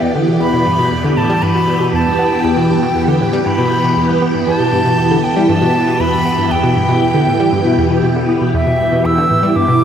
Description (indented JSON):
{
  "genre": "ambient",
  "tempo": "118 BPM",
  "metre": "4/4",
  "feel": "straight",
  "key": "E minor",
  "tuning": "A4 = 441 Hz",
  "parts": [
    { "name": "bright silver concert flute", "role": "melody", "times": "0.0-9.8 s", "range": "E5 to E6", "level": "-17 LUFS", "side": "equal", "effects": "shimmer reverb, tape echo" },
    { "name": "phased string machine", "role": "sustained chords", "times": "0.0-9.8 s", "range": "E3 to G5", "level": "-14 LUFS", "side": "equal", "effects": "ensemble chorus, phaser, shimmer reverb" },
    { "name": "analog pluck", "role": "riff", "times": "0.0-9.8 s", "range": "E2 to B3", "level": "-17 LUFS", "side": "equal", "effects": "chorus, tape echo" }
  ],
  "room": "wet lush hall reverb, RT60 2.9 s",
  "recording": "dreamy mix soaked in reverb",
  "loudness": "-11 LUFS",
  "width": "side -8 dB against mid",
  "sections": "0.0-9.8 A section",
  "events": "none",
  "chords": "0.0 Em7"
}